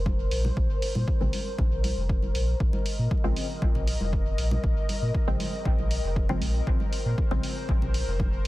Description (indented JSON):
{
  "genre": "dub techno",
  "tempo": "118 BPM",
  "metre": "4/4",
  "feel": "straight",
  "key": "Bb minor",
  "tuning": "A4 = 441 Hz",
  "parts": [
    { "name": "airy breathy pad", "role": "sustained chords", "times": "0.0-8.5 s", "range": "Bb4 to Eb5", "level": "-35 LUFS", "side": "left 2 dB", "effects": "chorus, sidechain pumping" },
    { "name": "filtered dub chord stab", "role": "stabs", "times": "0.0-8.5 s", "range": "Db3 to C4", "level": "-35 LUFS", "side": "equal", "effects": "chorus, phaser, sidechain pumping, dub echo" },
    { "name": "warm sub bass", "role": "bass", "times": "0.0-8.5 s", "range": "F1 to Bb2", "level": "-27 LUFS", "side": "equal", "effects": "tube saturation, sidechain pumping" },
    { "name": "electronic kick drum", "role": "drums", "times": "0.1-8.3 s", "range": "none", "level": "-27 LUFS", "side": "equal", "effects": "none" },
    { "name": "congas", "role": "percussion", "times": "0.1-8.3 s", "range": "none", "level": "-38 LUFS", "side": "equal", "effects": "sidechain pumping on perc, dub echo" },
    { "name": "electronic hi-hat", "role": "drums", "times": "0.3-8.5 s", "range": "none", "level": "-38 LUFS", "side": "right 1 dB", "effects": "none" }
  ],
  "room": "little or no reverb",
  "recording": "dense, heavily limited modern master, vinyl crackle",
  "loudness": "-24 LUFS",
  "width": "side -17 dB against mid",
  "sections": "0.0-8.5 A section",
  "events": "none",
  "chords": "0.0 Bbm9"
}